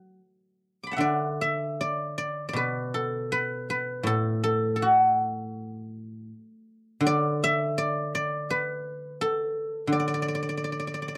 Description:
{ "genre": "chinese traditional, Chinese solo plucked strings", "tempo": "81 BPM", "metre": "4/4", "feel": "uneven beats, rubato", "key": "D gong mode", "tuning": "A4 = 442 Hz", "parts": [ { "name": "guzheng", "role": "solo", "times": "0.0-11.2 s", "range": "A2 to D6", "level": "-28 LUFS", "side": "equal", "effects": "none" } ], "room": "light reverb", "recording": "dry, close 1970s-style studio recording", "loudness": "-27 LUFS", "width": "mono", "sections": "0.0-11.2 A section", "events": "none", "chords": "none" }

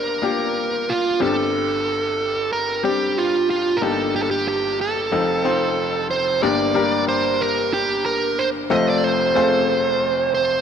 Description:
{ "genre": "pop", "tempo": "92 BPM", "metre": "4/4", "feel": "swing 55% on 16ths", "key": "G minor", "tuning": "A4 = 442 Hz", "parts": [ { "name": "dark smooth lead guitar", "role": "melody", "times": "0.0-10.6 s", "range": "F4 to Eb5", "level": "-20 LUFS", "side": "right 3 dB", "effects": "overdrive, shimmer reverb" }, { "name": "bright grand piano", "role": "accompaniment", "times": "0.0-10.6 s", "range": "F1 to C5", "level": "-22 LUFS", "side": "left 4 dB", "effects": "shimmer reverb" } ], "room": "wet lush hall reverb, RT60 2.2 s", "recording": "dark, warm production", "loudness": "-18 LUFS", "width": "side -8 dB against mid", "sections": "0.0-6.4 A section; 6.4-10.6 B section", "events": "none", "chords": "0.0 Gm7; 1.2 Csus2/G; 3.8 Ebmaj7/G; 5.1 F7; 6.4 Gm; 8.7 F" }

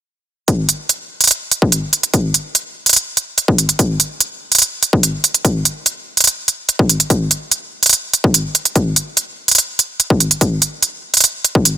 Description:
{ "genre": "dubstep", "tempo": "145 BPM", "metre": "4/4", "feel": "half-time", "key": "none", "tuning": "none", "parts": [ { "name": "electronic hi-hat", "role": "drums", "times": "0.5-11.7 s", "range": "none", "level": "-13 LUFS", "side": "right 2 dB", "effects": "none" }, { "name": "electronic kick drum", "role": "drums", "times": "0.5-11.6 s", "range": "none", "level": "-15 LUFS", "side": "left 1 dB", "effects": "high-pass filter on kick" } ], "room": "little or no reverb", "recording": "dense, heavily limited modern master", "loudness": "-12 LUFS", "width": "side -9 dB against mid", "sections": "0.5-11.8 A section", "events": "none", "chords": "none" }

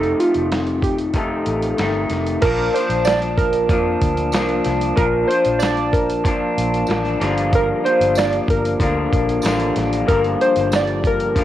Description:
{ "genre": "indie pop, bedroom pop", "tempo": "94 BPM", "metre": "4/4", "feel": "straight", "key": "Bb major", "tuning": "A4 = 440 Hz", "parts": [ { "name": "warbly lo-fi synth keys", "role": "melody", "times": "0.0-11.4 s", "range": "F4 to D5", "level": "-20 LUFS", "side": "equal", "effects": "analog chorus, cassette tape" }, { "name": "electric guitar through a small old amp", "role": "accompaniment", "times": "0.0-11.4 s", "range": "F2 to Eb4", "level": "-21 LUFS", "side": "left 2 dB", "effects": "wide subtle chorus, vibrato effect, cassette tape" }, { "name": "vintage muted fingered electric bass", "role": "bass", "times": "0.0-11.4 s", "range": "F1 to F2", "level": "-25 LUFS", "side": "equal", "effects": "none" }, { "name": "dusty soul sampler-style drum kit", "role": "drums", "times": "0.0-11.4 s", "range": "crash cymbal, hi-hat, kick drum, snare drum", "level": "-23 LUFS", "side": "equal", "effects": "cassette tape" }, { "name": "pipe organ, stopped flute", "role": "sustained chords", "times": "2.4-11.4 s", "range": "F3 to A5", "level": "-26 LUFS", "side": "right 2 dB", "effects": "cassette tape" }, { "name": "tambourine", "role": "percussion", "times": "3.0-10.9 s", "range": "none", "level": "-35 LUFS", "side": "right 5 dB", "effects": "none" } ], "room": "light reverb", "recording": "home recording on cassette", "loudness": "-16 LUFS", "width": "side -12 dB against mid", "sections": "0.0-2.4 A section; 2.4-11.4 B section", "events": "none", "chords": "0.0 F7; 2.4 Bbmaj7; 7.2 Gm7" }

